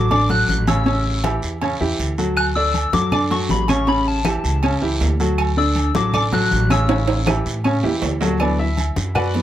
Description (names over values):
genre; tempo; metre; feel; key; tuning
latin, salsa; 159 BPM; 4/4; straight; D major; A4 = 439 Hz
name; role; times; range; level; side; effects
soft struck synth lead; melody; 0.0-7.5 s; A5 to F#6; -22 LUFS; left 3 dB; chorus
clear baby grand piano; accompaniment; 0.0-9.4 s; C#3 to F#5; -21 LUFS; equal; none
upright bass; bass; 0.0-9.4 s; A1 to A2; -21 LUFS; equal; none
agogo bells and timbales; percussion; 0.1-9.4 s; none; -26 LUFS; right 6 dB; none
congas; percussion; 0.1-9.4 s; none; -26 LUFS; left 2 dB; none
guiro; percussion; 0.1-9.4 s; none; -32 LUFS; right 3 dB; none
claves; percussion; 2.4-9.3 s; none; -29 LUFS; right 2 dB; none
room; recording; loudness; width
light reverb; none; -16 LUFS; side -12 dB against mid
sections
0.0-8.4 A section; 8.4-9.4 B section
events
drum fill 6.9-8.4; grand piano solo 8.4-9.4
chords
0.0 D; 0.9 A7; 2.4 D; 3.9 A7; 5.4 D; 6.9 A7; 8.4 D6